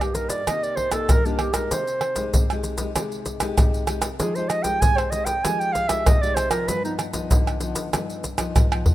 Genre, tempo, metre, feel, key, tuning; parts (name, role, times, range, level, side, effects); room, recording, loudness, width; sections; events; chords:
samba and choro; 96 BPM; 4/4; straight; C minor; A4 = 440 Hz
warm clarinet; melody; 0.0-6.9 s; D4 to Ab5; -24 LUFS; right 2 dB
nylon-string guitar; accompaniment; 0.0-8.9 s; G2 to G4; -29 LUFS; left 4 dB
maracas, pandeiro, tamborim and surdo; percussion; 0.0-8.9 s; -21 LUFS; equal
light reverb, small room ambience; rough home demo mix; -20 LUFS; side -14 dB against mid
0.0-8.9 A section
clarinet solo 0.0-8.9; drum fill 8.7
0.0 Cm7; 1.7 Abmaj7/C; 4.2 Fm9; 6.7 G7b13